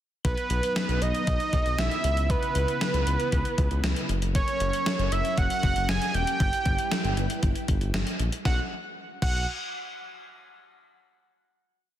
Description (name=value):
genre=synth-pop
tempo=117 BPM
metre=4/4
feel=straight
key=B major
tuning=A4 = 438 Hz
part: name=fat analog lead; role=melody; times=0.2-9.5 s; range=B4 to G#5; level=-29 LUFS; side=right 3 dB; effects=tape echo
part: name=string machine, full ensemble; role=sustained chords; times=0.2-8.4 s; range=C#3 to B4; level=-35 LUFS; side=left 1 dB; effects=ensemble chorus
part: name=smooth synth bass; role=bass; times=0.2-9.5 s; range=E1 to C#2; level=-28 LUFS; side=equal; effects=none
part: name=gated 80s digital drum machine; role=drums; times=0.2-9.3 s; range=crash cymbal, hi-hat, kick drum, snare drum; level=-28 LUFS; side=left 1 dB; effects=gated reverb, gated reverb snare, overdrive
room=light reverb, digital ambience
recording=dense, heavily limited modern master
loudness=-24 LUFS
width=side -12 dB against mid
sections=0.2-8.5 verse; 8.5-10.5 final chord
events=none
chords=0.2 B; 2.0 C#m7; 4.1 F#; 6.4 Em/G; 8.5 B5